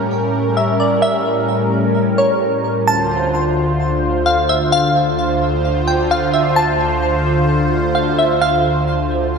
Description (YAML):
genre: hip hop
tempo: 130 BPM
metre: 4/4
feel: half-time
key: D minor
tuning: A4 = 439 Hz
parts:
  - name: glassy wavetable pluck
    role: melody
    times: 0.0-9.4 s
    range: C#5 to A5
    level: -18 LUFS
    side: equal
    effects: chorus, digital delay
  - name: warm analog pad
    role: sustained chords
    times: 0.0-9.4 s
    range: D2 to C5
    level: -16 LUFS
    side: equal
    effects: chorus
room: wet concert hall reverb, RT60 2.2 s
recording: none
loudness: -14 LUFS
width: side -5 dB against mid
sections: 0.0-2.9 A section; 2.9-9.4 B section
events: none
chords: 0.0 A7b9; 2.9 Dm7